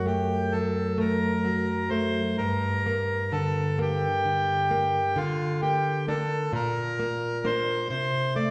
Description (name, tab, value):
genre	romantic duo for bandoneon and classical guitar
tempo	43 BPM (dotted quarters)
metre	6/8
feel	rubato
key	G minor, Bb major from 5.2 s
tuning	A4 = 444 Hz
part	bandoneon	melody	0.0-8.5 s	F4 to D5	-30 LUFS	equal	none
part	nylon-string guitar	accompaniment	0.0-8.5 s	F#2 to D4	-29 LUFS	equal	none
room	wet recital hall reverb, RT60 1.6 s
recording	recorded in a church or concert hall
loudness	-27 LUFS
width	mono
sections	0.0-8.5 A section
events	none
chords	0.0 F#dim; 2.4 Gm; 5.2 Bb/D; 6.5 Bb; 7.9 F/C (rootless)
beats	0.99 | 2.38 3.79 | 5.17 6.53 | 7.90